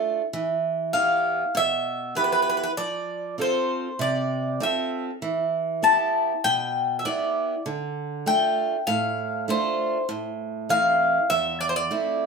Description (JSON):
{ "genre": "greek folk", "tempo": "98 BPM", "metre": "4/4", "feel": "straight", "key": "E phrygian", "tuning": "A4 = 440 Hz", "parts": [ { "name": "picked steel-string acoustic guitar", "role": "accompaniment", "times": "0.0-12.3 s", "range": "E2 to A4", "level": "-27 LUFS", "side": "right 4 dB", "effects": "none" }, { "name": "Greek bouzouki", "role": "melody", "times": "0.9-12.3 s", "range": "B4 to A5", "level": "-23 LUFS", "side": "left 2 dB", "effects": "plate reverb" } ], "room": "wet studio reverb, RT60 0.6 s", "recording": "none", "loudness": "-22 LUFS", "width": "side -4 dB against mid", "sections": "0.0-12.3 A section", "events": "none", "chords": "0.3 Em; 2.8 F; 5.2 Em; 7.7 Dm; 10.1 Am" }